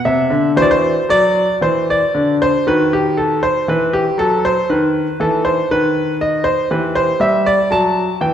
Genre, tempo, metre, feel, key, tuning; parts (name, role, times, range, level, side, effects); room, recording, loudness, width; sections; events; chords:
classical, baroque-style suite movement for grand piano; 59 BPM; 4/4; rubato; A4 = 438 Hz
clear grand piano; solo; 0.1-8.3 s; C3 to A5; -13 LUFS; equal
wet scoring stage reverb, RT60 1.8 s; recorded in a church or concert hall; -13 LUFS; side -9 dB against mid
0.0-8.3 A section
0.0 E5; 0.6 D9; 2.6 D#dim7; 6.7 Em